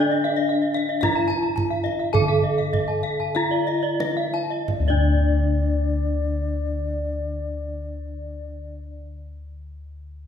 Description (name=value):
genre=Balinese gamelan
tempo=43-60 BPM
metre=4/4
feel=straight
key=unclear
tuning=A4 = 440 Hz
part: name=gamelan-type bronze metallophone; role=melody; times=0.0-9.1 s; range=D4 to A4-45c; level=-25 LUFS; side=equal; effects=none
part: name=mellow xiao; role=second line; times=0.0-8.8 s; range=D5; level=-33 LUFS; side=left 2 dB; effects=none
part: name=gamelan-type bronze metallophone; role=arpeggios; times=0.0-9.0 s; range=D5 to A5-45c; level=-29 LUFS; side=left 7 dB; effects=none
part: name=gamelan-type bossed gongs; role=bass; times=0.0-8.9 s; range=D2 to Eb4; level=-26 LUFS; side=left 2 dB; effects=none
part: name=gamelan-type bronze metallophone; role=arpeggios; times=0.1-9.0 s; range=D5 to Bb5-40c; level=-30 LUFS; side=right 2 dB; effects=none
part: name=kendang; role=percussion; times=0.2-5.3 s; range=none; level=-28 LUFS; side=right 2 dB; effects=none
room=wet concert hall reverb, RT60 1.9 s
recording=minimal, uncompressed stereo recording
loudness=-20 LUFS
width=side -8 dB against mid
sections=0.0-4.7 A section; 4.7-10.3 B section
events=slowing down 0.0-4.7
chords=none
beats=1.02 2.14 3.35 | 4.68 6.08 7.48 8.88